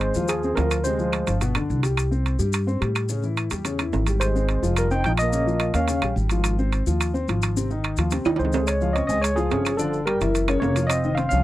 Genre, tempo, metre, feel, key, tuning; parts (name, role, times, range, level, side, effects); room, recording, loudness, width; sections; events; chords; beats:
Afro-Cuban jazz; 215 BPM; 4/4; straight; Ab major; A4 = 440 Hz
overdriven tine electric piano; melody; 0.0-1.4, 4.2-6.1, 8.4-11.4 s; Ab4 to G5; -25 LUFS; equal; fast tremolo
trombone with plunger mute; second line; 0.0-1.4, 4.2-6.1, 8.4-11.4 s; F3 to Eb4; -30 LUFS; right 5 dB
warm concert grand piano; accompaniment; 0.0-11.4 s; B2 to Db6; -26 LUFS; left 3 dB
upright bass; bass; 0.0-11.4 s; F1 to A2; -24 LUFS; equal
maracas; percussion; 0.0-11.4 s; -38 LUFS; left 7 dB
timbales; percussion; 0.0-11.3 s; -27 LUFS; right 6 dB
claves; percussion; 0.3-11.0 s; -33 LUFS; left 7 dB
little or no reverb; dry, close 1970s-style studio recording; -20 LUFS; side -15 dB against mid
0.0-8.7 A section; 8.7-11.4 B section
drum fill 8.3-8.7
0.0 Ab69; 0.9 Dm7b5; 1.4 G; 2.0 C5; 3.1 A7; 4.2 Abmaj7; 4.8 Fsus4; 5.3 Bbm; 5.9 Eb9; 6.4 Ab6; 8.7 Db; 9.8 Gm7; 10.3 Gb7; 10.9 F5
0.01 0.29 0.57 | 0.85 1.14 1.42 1.70 | 1.98 2.25 2.53 2.81 | 3.09 3.37 3.65 3.93 | 4.21 4.49 4.77 5.05 | 5.33 5.61 5.89 6.17 | 6.45 6.73 7.00 7.28 | 7.56 7.84 8.12 8.40 | 8.68 8.96 9.23 9.51 | 9.79 10.07 10.35 10.62 | 10.90 11.18